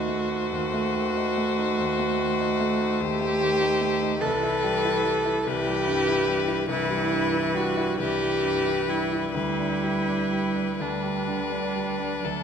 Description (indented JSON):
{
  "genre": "classical, slow romantic movement for piano quartet",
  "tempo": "41-50 BPM (dotted quarters)",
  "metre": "12/8",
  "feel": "rubato",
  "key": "G major from 4.2 s",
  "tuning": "A4 = 437 Hz",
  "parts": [
    { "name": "rich violin", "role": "melody", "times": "0.0-12.4 s", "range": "A4 to B#4", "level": "-29 LUFS", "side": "left 11 dB", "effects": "none" },
    { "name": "clear cello", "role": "second line", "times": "0.0-12.4 s", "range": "E3 to A3", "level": "-30 LUFS", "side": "right 7 dB", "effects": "none" },
    { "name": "bright concert grand piano", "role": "accompaniment", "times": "0.0-12.4 s", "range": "C2 to E4", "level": "-30 LUFS", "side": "left 3 dB", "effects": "none" },
    { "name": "clear viola", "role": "accompaniment", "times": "0.0-12.4 s", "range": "D4 to A4", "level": "-26 LUFS", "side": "right 2 dB", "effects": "none" }
  ],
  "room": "moderate concert hall reverb, RT60 1.9 s",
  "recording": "close, detailed microphones",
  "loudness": "-23 LUFS",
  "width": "side -7 dB against mid",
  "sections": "0.0-12.4 A section",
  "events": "none",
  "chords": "0.0 D#dim7; 4.2 Cmaj7; 9.4 G/D"
}